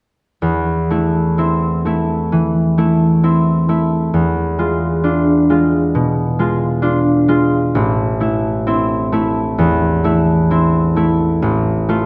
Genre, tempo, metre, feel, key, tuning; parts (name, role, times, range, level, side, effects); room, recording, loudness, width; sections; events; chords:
classical; 66 BPM; 4/4; rubato; A minor; A4 = 437 Hz
concert harp; accompaniment; 0.4-12.1 s; A1 to F4; -16 LUFS; equal
wet scoring stage reverb, RT60 1.7 s; -16 LUFS; mono
0.4-12.1 A section
0.4 Am/E; 4.1 E7b9; 7.7 Am; 11.4 Dm/A (rootless)